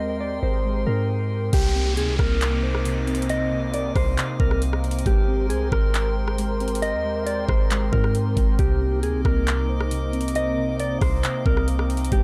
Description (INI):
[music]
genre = hip hop, atmospheric cloud-rap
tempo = 136 BPM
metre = 4/4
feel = half-time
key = C minor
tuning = A4 = 439 Hz
[part]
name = mellow electric guitar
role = melody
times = 0.0-12.2 s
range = G4 to Eb5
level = -30 LUFS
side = equal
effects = tape echo
[part]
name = sweeping resonant pad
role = sustained chords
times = 0.0-12.2 s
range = C3 to C5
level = -34 LUFS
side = equal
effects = subtle chorus, sidechain pumping
[part]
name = muted felt-like synth keys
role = arpeggios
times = 0.0-12.2 s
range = C3 to C5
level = -32 LUFS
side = equal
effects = chorus, tape echo
[part]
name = warm 808-style bass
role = bass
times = 0.0-12.2 s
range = Ab1 to Ab2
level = -27 LUFS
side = equal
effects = none
[part]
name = drifting glass-harmonics texture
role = texture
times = 0.0-12.2 s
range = Bb4 to D6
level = -39 LUFS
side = equal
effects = chorus, built-in reverb
[part]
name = trap drum kit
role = drums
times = 1.5-12.2 s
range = crash cymbal, handclaps, hi-hat, kick drum, rim click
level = -27 LUFS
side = equal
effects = none
[part]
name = downlifter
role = sound effects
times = 1.5-5.1 s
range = none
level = -36 LUFS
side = equal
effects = none
[sound]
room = digital ambience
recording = dry, gritty hardware recording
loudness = -23 LUFS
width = mono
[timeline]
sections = 0.0-1.5 A section; 1.5-12.2 B section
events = none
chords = 0.0 Abmaj9; 1.5 Cm9; 5.1 Abmaj9; 8.6 Cm9